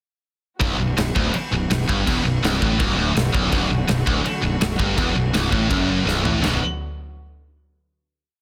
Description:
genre	heavy metal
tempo	165 BPM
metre	4/4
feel	straight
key	B phrygian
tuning	A4 = 440 Hz
part	dark chamber string section	sustained chords	0.6-6.6 s	D3 to F#4	-34 LUFS	equal	none
part	heavy high-gain guitar	riff	0.6-6.6 s	B1 to B2	-26 LUFS	equal	distortion
part	high-gain distorted guitar	riff	0.6-6.6 s	B1 to B2	-26 LUFS	equal	distortion
part	fuzz fingered electric bass	bass	0.6-6.6 s	B0 to A1	-28 LUFS	equal	overdrive
part	big rock drum kit	drums	0.6-6.5 s	crash cymbal, kick drum, snare drum, toms	-27 LUFS	equal	none
room	small room ambience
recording	dense, heavily limited modern master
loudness	-20 LUFS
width	mono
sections	0.6-6.4 riff; 6.4-7.9 final chord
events	drum fill 6.1-6.4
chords	0.6 Bm; 6.4 B5

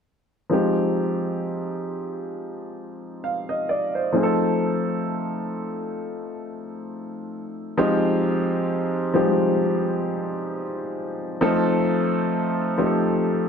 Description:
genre	R&B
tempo	66 BPM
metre	4/4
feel	swing 56% on 16ths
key	unclear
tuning	A4 = 440 Hz
part	warm upright piano	solo	0.5-13.5 s	F3 to F5	-22 LUFS	equal	none
room	moderate echo chamber reverb, RT60 1.9 s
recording	none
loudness	-21 LUFS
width	side -6 dB against mid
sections	0.5-7.8 A section; 7.8-13.5 B section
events	none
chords	0.5 Fm9; 4.1 F7; 7.8 Fm9; 11.4 F7

